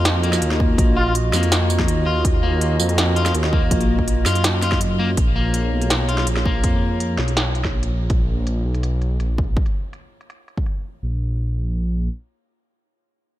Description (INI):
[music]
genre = half-time drum and bass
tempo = 164 BPM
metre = 4/4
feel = half-time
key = Bb phrygian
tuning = A4 = 439 Hz
[part]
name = dark analog pad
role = sustained chords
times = 0.0-8.1 s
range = Bb3 to Eb5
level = -27 LUFS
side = right 2 dB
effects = chorus, vintage 12-bit sampler grit, sidechain pumping
[part]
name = electric guitar at the edge of break-up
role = arpeggios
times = 0.0-7.2 s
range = Bb3 to F4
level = -26 LUFS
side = left 4 dB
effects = ping-pong delay
[part]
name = dark detuned saw bass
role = bass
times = 0.0-12.1 s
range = Bb1 to Gb2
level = -20 LUFS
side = equal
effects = none
[part]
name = industrial drum kit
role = drums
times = 0.1-10.7 s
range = hi-hat, snare drum, tambourine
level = -24 LUFS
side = equal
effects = low-pass filter on hats, low-pass filter on cymbals, low-pass filter on perc, low-pass filter on snare, low-pass filter on room
[part]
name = electronic kick drum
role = drums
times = 0.6-10.6 s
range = none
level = -20 LUFS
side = equal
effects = none
[part]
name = trumpet with plunger mute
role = melody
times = 1.0-1.1 s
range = F4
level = -30 LUFS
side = equal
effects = none
[sound]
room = little or no reverb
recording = none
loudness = -17 LUFS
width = side -14 dB against mid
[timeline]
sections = 0.0-5.2 A section; 5.2-11.0 B section; 11.0-13.4 C section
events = drop 0.0-5.2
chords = 0.0 Ebmadd9; 5.2 Bbm7; 11.0 N.C.